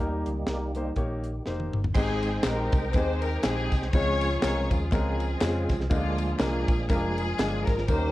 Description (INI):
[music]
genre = uptempo gospel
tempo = 122 BPM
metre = 4/4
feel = swing 57% on 8ths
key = Ab major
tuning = A4 = 438 Hz
[part]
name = warm baby grand piano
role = accompaniment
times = 0.0-8.1 s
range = Ab2 to Db5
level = -31 LUFS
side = left 2 dB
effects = none
[part]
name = mellow French horn section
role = sustained chords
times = 0.0-1.9 s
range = Eb3 to Eb4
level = -41 LUFS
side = equal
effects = none
[part]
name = percussive tonewheel organ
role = sustained chords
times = 0.0-8.1 s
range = Db3 to G5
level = -35 LUFS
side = right 2 dB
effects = slow rotary speaker, overdrive, chorus vibrato
[part]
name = hollow-body short-scale fingered electric bass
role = bass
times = 0.0-8.1 s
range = F1 to F2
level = -30 LUFS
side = equal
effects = none
[part]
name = tight funk drum kit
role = drums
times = 0.3-8.0 s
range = crash cymbal, hi-hat, kick drum, ride cymbal, snare drum, toms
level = -28 LUFS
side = equal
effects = none
[part]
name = rich studio string section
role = melody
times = 2.0-8.1 s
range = Ab3 to Db5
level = -31 LUFS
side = left 1 dB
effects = plate reverb
[part]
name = tambourine and handclaps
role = percussion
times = 2.0-8.0 s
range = none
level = -44 LUFS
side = left 6 dB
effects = none
[sound]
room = light reverb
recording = worn, warbling old tape, cassette tape, warbly pitch drift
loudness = -24 LUFS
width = side -16 dB against mid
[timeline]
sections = 0.0-2.0 A section; 2.0-8.1 B section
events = tonewheel organ solo 0.0-2.0; drum fill 1.5-2.0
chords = 0.0 Eb; 2.0 Abmaj7; 3.9 Dbmaj7; 5.9 Bb7